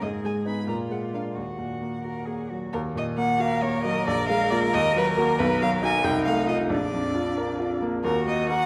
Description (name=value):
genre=quick classical-period movement for piano trio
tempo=90 BPM (dotted quarters)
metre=6/8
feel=straight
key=Eb minor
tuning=A4 = 440 Hz
part: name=rich violin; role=melody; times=0.0-8.7 s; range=Bb4 to Cb6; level=-30 LUFS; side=equal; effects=none
part: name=rich cello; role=second line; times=0.0-8.7 s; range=D4 to Bb4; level=-32 LUFS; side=equal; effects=none
part: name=clear baby grand piano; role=accompaniment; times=0.0-8.7 s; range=Bb1 to Bb4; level=-28 LUFS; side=equal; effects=none
room=wet concert hall reverb, RT60 1.9 s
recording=dark, warm production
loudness=-25 LUFS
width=mono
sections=0.0-2.7 A section; 2.7-8.7 A section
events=none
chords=0.0 Abm; 0.7 Bb7; 1.4 Ebm; 4.1 Bb5; 4.7 Ebm; 5.4 B; 6.0 F7/C; 6.7 Bb; 8.1 Ebm